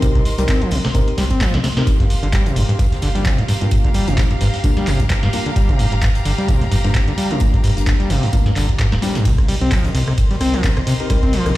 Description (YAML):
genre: acid house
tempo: 130 BPM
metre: 4/4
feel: swing 56% on 16ths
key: G minor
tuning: A4 = 440 Hz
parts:
  - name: overdriven acid bass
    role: riff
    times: 0.0-11.5 s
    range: G2 to C4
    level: -20 LUFS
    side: equal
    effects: distortion, tube saturation, sidechain pumping, tape echo
  - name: deep mellow chord stab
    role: stabs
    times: 0.0-11.6 s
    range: G3 to Bb4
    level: -26 LUFS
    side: left 2 dB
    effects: lush chorus, tape echo
  - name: round analog bass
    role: bass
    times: 0.0-11.6 s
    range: D1 to D2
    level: -21 LUFS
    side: equal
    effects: sidechain pumping
  - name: booming analog drum machine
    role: drums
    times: 0.0-11.5 s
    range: handclaps, hi-hat, ride cymbal, rim click, snare drum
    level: -26 LUFS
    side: right 1 dB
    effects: studio reverb
  - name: electronic kick drum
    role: drums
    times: 0.0-11.3 s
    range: none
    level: -18 LUFS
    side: equal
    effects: studio reverb
  - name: open jazz drum kit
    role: drums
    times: 0.0-11.6 s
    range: hi-hat, snare drum, tambourine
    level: -34 LUFS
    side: left 3 dB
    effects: sidechain pumping on hats, high-pass filter on hats, studio reverb, high-pass filter on snare, sidechain pumping on perc, high-pass filter on perc, high-pass filter on room
  - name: rich chamber string section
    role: texture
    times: 0.0-11.6 s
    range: G4 to C6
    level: -28 LUFS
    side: equal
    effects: sidechain pumping
room: little or no reverb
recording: played on a big sound system in a bare room, stone room reverb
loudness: -14 LUFS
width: side -16 dB against mid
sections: 0.0-11.6 A section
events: drum fill 1.2-1.9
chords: 0.0 Cm7; 1.9 Gm7; 9.3 Cm7